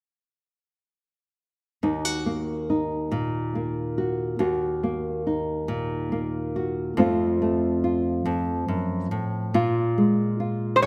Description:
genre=folk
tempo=47 BPM (dotted quarters)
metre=6/8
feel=straight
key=Eb dorian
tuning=A4 = 440 Hz
part: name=nylon-string guitar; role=accompaniment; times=1.8-10.9 s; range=Eb2 to Gb4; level=-26 LUFS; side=equal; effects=none
part: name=lap resonator guitar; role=melody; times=10.8-10.9 s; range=C5 to Db5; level=-18 LUFS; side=equal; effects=none
room=moderate scoring stage reverb, RT60 1.9 s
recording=none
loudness=-26 LUFS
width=mono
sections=1.8-10.9 A section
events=none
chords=1.8 Ebm; 7.0 F; 9.6 Bb7(no3)

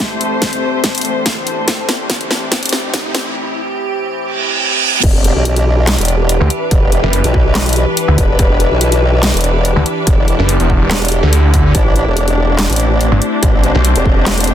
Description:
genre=heavy wobble dubstep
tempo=143 BPM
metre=4/4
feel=half-time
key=E minor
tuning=A4 = 439 Hz
part: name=evolving wavetable pad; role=sustained chords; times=0.0-14.5 s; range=A2 to B4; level=-20 LUFS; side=equal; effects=chorus, built-in reverb, sidechain pumping
part: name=dubstep drum kit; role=drums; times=0.0-14.5 s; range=crash cymbal, handclaps, hi-hat, snare drum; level=-17 LUFS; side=equal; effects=none
part: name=electronic kick drum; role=drums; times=0.0-14.1 s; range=none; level=-14 LUFS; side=equal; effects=distortion
part: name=riser and reverse cymbal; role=sound effects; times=1.9-5.0 s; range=none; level=-20 LUFS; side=right 4 dB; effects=none
part: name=muted studio string section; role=texture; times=0.0-14.5 s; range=A3 to C5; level=-20 LUFS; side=left 2 dB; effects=sidechain pumping
part: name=formant-sweep wobble bass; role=bass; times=5.0-14.5 s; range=E1 to B1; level=-14 LUFS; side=equal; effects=chorus, overdrive
part: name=snarling distorted saw bass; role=bass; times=6.4-13.9 s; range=E1 to D2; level=-11 LUFS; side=equal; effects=distortion, overdrive
room=little or no reverb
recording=dense, heavily limited modern master, high-pass filter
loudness=-11 LUFS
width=side -10 dB against mid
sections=0.0-5.0 A section; 5.0-14.5 B section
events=build-up 0.0-5.0; drum fill 0.0-3.4; filter sweep on ambient pad 0.0-5.0; filter sweep 0.0-5.0; riser 1.9-3.4; reverse cymbal 4.3-5.0; drop 5.0-14.5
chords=0.0 Am; 5.0 Em; 11.7 Am

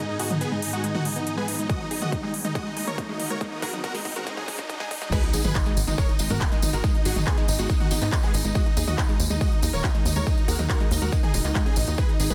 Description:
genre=uplifting trance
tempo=140 BPM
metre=4/4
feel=straight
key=G# minor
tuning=A4 = 439 Hz
part: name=big supersaw lead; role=melody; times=0.0-12.3 s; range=B3 to D#5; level=-33 LUFS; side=equal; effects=sidechain pumping, delay
part: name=shimmering ambient pad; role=sustained chords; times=0.0-12.3 s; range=D#2 to A#4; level=-39 LUFS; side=equal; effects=none
part: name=unison pluck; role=arpeggios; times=0.0-12.3 s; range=G#2 to G#4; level=-36 LUFS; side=equal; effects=sidechain pumping, dub echo
part: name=riser and sub drop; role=sound effects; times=0.2-6.8 s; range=none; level=-39 LUFS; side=equal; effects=none
part: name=big-room dance drum kit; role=drums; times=0.2-12.3 s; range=crash cymbal, handclaps, hi-hat, toms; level=-33 LUFS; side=equal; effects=overdrive
part: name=electronic kick drum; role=drums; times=1.7-12.1 s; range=none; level=-27 LUFS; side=equal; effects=overdrive
part: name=warm grand piano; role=second line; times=5.1-12.3 s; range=D#4 to D#5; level=-38 LUFS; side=equal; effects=sidechain pumping, dub echo
part: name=tambourine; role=percussion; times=5.1-12.3 s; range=none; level=-36 LUFS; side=equal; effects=none
part: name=tight sequencer bass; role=bass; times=5.3-12.3 s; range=D#1 to G#2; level=-28 LUFS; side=equal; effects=sidechain pumping
room=little or no reverb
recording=dense, heavily limited modern master, high-pass filter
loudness=-25 LUFS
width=mono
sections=0.0-5.1 A section; 5.1-12.3 B section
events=build-up 0.0-5.1; filter sweep on synth pluck 0.0-5.1; drum fill 1.7-5.1; drop 5.1-12.3; impact 5.1-6.8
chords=0.0 G#m; 1.7 D#m; 5.1 G#m; 8.6 D#m

